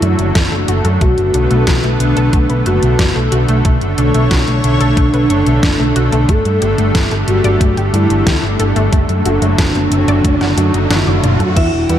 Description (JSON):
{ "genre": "synthwave", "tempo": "91 BPM", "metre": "4/4", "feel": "straight", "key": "unclear", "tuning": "A4 = 440 Hz", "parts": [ { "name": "soft octave-layered synth lead", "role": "melody", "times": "0.0-12.0 s", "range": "D4 to A4", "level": "-18 LUFS", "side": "equal", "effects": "chorus, tremolo, tape echo, shimmer reverb" }, { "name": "lush unison pad", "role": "sustained chords", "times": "0.0-12.0 s", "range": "D3 to C#5", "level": "-18 LUFS", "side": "equal", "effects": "chorus, sidechain pumping, shimmer reverb" }, { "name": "analog pluck", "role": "arpeggios", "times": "0.0-12.0 s", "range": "A3 to G5", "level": "-23 LUFS", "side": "left 2 dB", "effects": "chorus, digital delay, shimmer reverb" }, { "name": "hollow-body short-scale picked electric bass", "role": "bass", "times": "0.0-12.0 s", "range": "E1 to G2", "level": "-15 LUFS", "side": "equal", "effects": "tube saturation, sidechain pumping" }, { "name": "pop drum kit", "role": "drums", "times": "0.0-12.0 s", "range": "crash cymbal, hi-hat, snare drum, toms", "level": "-20 LUFS", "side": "left 1 dB", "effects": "overdrive" }, { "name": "electronic kick drum", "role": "drums", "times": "0.4-11.7 s", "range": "none", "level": "-14 LUFS", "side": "equal", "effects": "none" }, { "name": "riser", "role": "sound effects", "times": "8.5-11.6 s", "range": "none", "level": "-23 LUFS", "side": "right 2 dB", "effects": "none" }, { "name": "soft synth bell", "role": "second line", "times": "11.6-12.0 s", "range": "E5", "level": "-22 LUFS", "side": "equal", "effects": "chorus, phaser, shimmer reverb" }, { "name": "mellow FM electric piano", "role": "stabs", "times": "11.9-12.0 s", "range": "G3 to B4", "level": "-19 LUFS", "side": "equal", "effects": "chorus" } ], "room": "light reverb, digital ambience", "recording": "dark, warm production", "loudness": "-11 LUFS", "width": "side -10 dB against mid", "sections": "0.0-11.6 A section", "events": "riser 8.5-11.6; kick drops out 10.9-11.6; drum fill 10.9-11.6", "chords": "0.0 D/F#; 1.0 Bm7; 6.3 Gsus2; 8.9 D/F#", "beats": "0.35 | 1.01 1.67 2.33 2.99 | 3.65 4.31 4.97 5.63 | 6.29 6.95 7.61 8.27 | 8.93 9.59 10.24 10.90 | 11.56" }